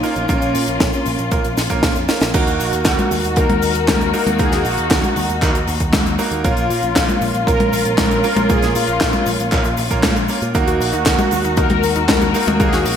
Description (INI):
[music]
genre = italo disco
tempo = 117 BPM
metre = 4/4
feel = straight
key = Eb minor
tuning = A4 = 440 Hz
[part]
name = mellow synth brass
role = melody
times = 0.0-13.0 s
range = Db4 to Bb4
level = -21 LUFS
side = left 1 dB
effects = chorus, ping-pong delay
[part]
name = muted studio string section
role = sustained chords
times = 0.0-13.0 s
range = Bb3 to Gb4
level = -24 LUFS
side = left 3 dB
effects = none
[part]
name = bright concert grand piano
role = stabs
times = 0.0-13.0 s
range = Bb3 to Bb4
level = -24 LUFS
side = right 5 dB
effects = none
[part]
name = tight funk drum kit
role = drums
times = 0.0-13.0 s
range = cabasa, crash cymbal, handclaps, hi-hat, snare drum, toms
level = -19 LUFS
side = left 1 dB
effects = studio reverb, gated reverb
[part]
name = picked electric bass with an envelope filter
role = bass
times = 0.2-13.0 s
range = Bb1 to Bb2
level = -24 LUFS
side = equal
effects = none
[part]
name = electronic kick drum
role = drums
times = 0.3-12.7 s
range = none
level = -21 LUFS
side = equal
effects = studio reverb
[part]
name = analog pluck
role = arpeggios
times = 10.5-12.9 s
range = Eb4 to Bb4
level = -26 LUFS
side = left 5 dB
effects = chorus, cassette tape, digital delay
[sound]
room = moderate plate reverb, RT60 1.6 s, small room ambience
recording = bright 1980s-style digital production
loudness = -14 LUFS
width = side -8 dB against mid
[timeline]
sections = 0.0-2.3 A section; 2.3-13.0 B section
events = drum fill 2.1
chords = 0.0 Bbm; 2.3 Ebm; 6.4 Bbm; 10.5 Ebm